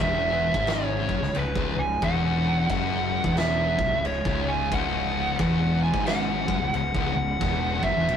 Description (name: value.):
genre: stoner and doom metal.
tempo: 89 BPM.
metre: 4/4.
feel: swing 62% on 8ths.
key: C# minor.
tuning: A4 = 440 Hz.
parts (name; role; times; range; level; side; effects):
fuzz lead guitar; melody; 0.0-8.2 s; B4 to G#5; -26 LUFS; right 2 dB; distortion, tape echo.
string machine, violas; sustained chords; 0.0-8.2 s; C#3 to C#4; -36 LUFS; equal; ensemble chorus.
thick fuzz guitar; riff; 0.0-8.2 s; C#2 to B2; -28 LUFS; left 6 dB; distortion.
thick fuzz guitar; riff; 0.0-8.2 s; C#2 to B2; -32 LUFS; right 4 dB; distortion.
fuzz fingered electric bass; bass; 0.0-8.2 s; C#1 to B1; -31 LUFS; equal; overdrive.
oversized low-tuned drum kit; drums; 0.0-8.2 s; crash cymbal, kick drum, snare drum; -30 LUFS; equal; none.
room: moderate studio reverb, RT60 0.6 s.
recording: rough rehearsal-room recording.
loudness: -22 LUFS.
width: side -8 dB against mid.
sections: 0.0-8.2 A section.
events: none.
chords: 0.0 C#m.